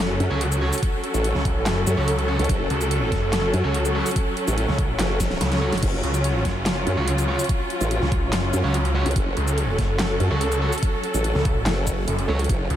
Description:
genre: heavy wobble dubstep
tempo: 144 BPM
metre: 4/4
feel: half-time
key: F# harmonic minor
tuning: A4 = 439 Hz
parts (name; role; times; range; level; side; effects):
- clear symphonic string section; sustained chords; 0.0-12.8 s; F#3 to A4; -25 LUFS; equal; sidechain pumping
- snarling distorted saw bass; bass; 0.0-12.8 s; F#1 to C#2; -24 LUFS; equal; distortion, overdrive
- formant-sweep wobble bass; bass; 0.2-12.7 s; F#1 to F#2; -23 LUFS; equal; chorus, overdrive
- dubstep drum kit; drums; 0.2-12.8 s; crash cymbal, handclaps, hi-hat, shaker, snare drum; -29 LUFS; equal; overdrive
- sludgy distorted guitar; stabs; 0.3-12.4 s; C#4 to C#5; -34 LUFS; right 3 dB; none
- electronic kick drum; drums; 0.8-12.6 s; none; -24 LUFS; equal; overdrive
room: light reverb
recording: none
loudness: -20 LUFS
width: side -11 dB against mid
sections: 0.0-12.8 A section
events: drum fill 5.2-5.8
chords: 0.0 F#5

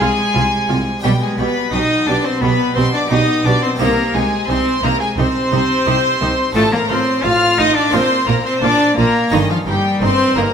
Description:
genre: classical, baroque-style concerto movement with solo episodes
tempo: 87 BPM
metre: 4/4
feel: straight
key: C minor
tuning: A4 = 439 Hz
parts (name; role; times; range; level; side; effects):
- rich cello; melody; 0.0-10.5 s; Eb3 to F4; -18 LUFS; left 1 dB; none
- rich chamber violin section; melody; 0.0-10.5 s; Eb5 to F6; -21 LUFS; left 2 dB; none
- warm chamber violin section; second line; 0.0-10.5 s; Eb4 to F5; -20 LUFS; left 1 dB; none
- dark chamber viola section; accompaniment; 0.0-10.4 s; Eb4 to G4; -26 LUFS; right 1 dB; none
- harpsichord; accompaniment; 0.0-10.5 s; G2 to G4; -26 LUFS; right 1 dB; none
- rich chamber cello section; bass; 0.0-10.4 s; G2 to C3; -23 LUFS; right 3 dB; none
- rich chamber double bass section; bass; 0.0-10.4 s; G1 to C2; -22 LUFS; right 3 dB; none
room: wet recital hall reverb, RT60 1.6 s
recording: none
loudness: -13 LUFS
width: side -7 dB against mid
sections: 0.0-10.5 A section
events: none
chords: 0.0 Dm7b5/C; 1.0 G/B; 3.8 Cm; 6.6 F7/A; 7.9 Bb; 9.3 Eb7/G

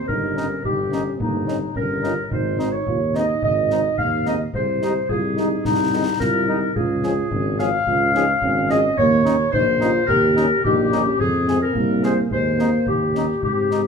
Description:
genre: military-style march for wind band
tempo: 108 BPM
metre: 2/4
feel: straight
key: Ab major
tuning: A4 = 439 Hz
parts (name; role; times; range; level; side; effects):
- dark woodwind section; second line; 0.0-13.9 s; Eb4 to F5; -21 LUFS; left 2 dB; none
- mellow euphonium; second line; 0.0-13.9 s; Ab3 to Ab4; -25 LUFS; right 3 dB; none
- mellow tuba; bass; 0.1-13.9 s; G1 to Ab2; -24 LUFS; right 2 dB; none
- concert bass drum and concert snare drum; drums; 0.1-13.8 s; none; -29 LUFS; left 1 dB; none
- warm cornet; melody; 0.4-13.8 s; Eb4 to Ab4; -31 LUFS; right 1 dB; none
- mellow French horn section; accompaniment; 0.4-13.8 s; C3 to Eb4; -30 LUFS; left 6 dB; none
room: moderate large studio reverb, RT60 1.1 s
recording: minimal, uncompressed stereo recording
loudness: -17 LUFS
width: side -6 dB against mid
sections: 0.0-13.9 A section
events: none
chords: 0.1 Eb7/G; 2.3 Ab; 4.5 Ab/C; 6.8 Db; 9.0 Eb7; 11.2 Fm; 12.3 Ab/Eb; 12.9 Eb7

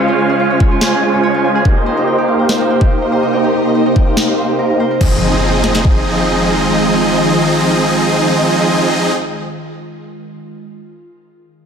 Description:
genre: future bass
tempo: 143 BPM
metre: 4/4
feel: half-time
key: F minor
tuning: A4 = 440 Hz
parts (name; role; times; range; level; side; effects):
- ethereal airy pad; sustained chords; 0.0-9.1 s; C3 to F4; -20 LUFS; equal; ensemble chorus, built-in reverb, phaser, sidechain pumping
- Celtic harp; arpeggios; 0.0-7.7 s; Eb4 to Ab5; -20 LUFS; right 3 dB; sidechain pumping, diffuse ambient delay
- supersaw chords; riff; 0.0-9.1 s; F3 to Ab5; -14 LUFS; right 1 dB; sidechain pumping, low-pass filter, diffuse ambient delay
- trap drum kit; drums; 0.6-6.0 s; kick drum, snare drum; -13 LUFS; equal; overdrive
- trap drum kit; drums; 0.8-5.1 s; crash cymbal, snare drum; -20 LUFS; left 1 dB; overdrive
- impact; sound effects; 5.0-9.4 s; none; -21 LUFS; equal; none
room: wet plate reverb, RT60 1.5 s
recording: dreamy mix soaked in reverb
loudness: -11 LUFS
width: side -7 dB against mid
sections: 0.0-5.0 A section; 5.0-8.4 B section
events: filter sweep on supersaw synth 0.0-5.0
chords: 0.0 Dbmaj7; 1.7 Cm7; 5.0 Fm7

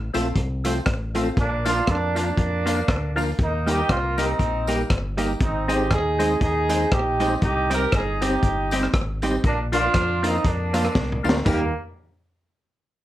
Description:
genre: ska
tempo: 119 BPM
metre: 4/4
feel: swing 57% on 8ths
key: Eb major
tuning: A4 = 441 Hz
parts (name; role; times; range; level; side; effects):
- fingered electric bass; bass; 0.0-11.7 s; G1 to F2; -27 LUFS; equal; none
- vintage hollow-body jazz guitar; accompaniment; 0.1-11.6 s; F3 to Ab4; -26 LUFS; right 2 dB; slapback echo
- percussive tonewheel organ; stabs; 0.1-11.7 s; A3 to C5; -29 LUFS; left 4 dB; chorus vibrato, slow rotary speaker, slapback echo
- crunchy breakbeat drum kit; drums; 0.1-11.6 s; hi-hat, kick drum, rim click, snare drum, splash cymbal, toms; -24 LUFS; equal; slapback echo
- tambourine; percussion; 0.1-11.7 s; none; -40 LUFS; left 4 dB; slapback echo
- mellow horn section; melody; 1.4-11.7 s; Bb3 to Bb4; -24 LUFS; right 2 dB; slapback echo
room: light reverb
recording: none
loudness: -20 LUFS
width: side -14 dB against mid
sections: 0.0-11.5 A section; 11.5-13.0 B section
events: drum fill 11.0-11.5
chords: 0.0 F; 1.4 Bb; 3.4 Eb; 5.4 Ab; 7.4 Cm; 9.4 Bb; 11.5 Eb

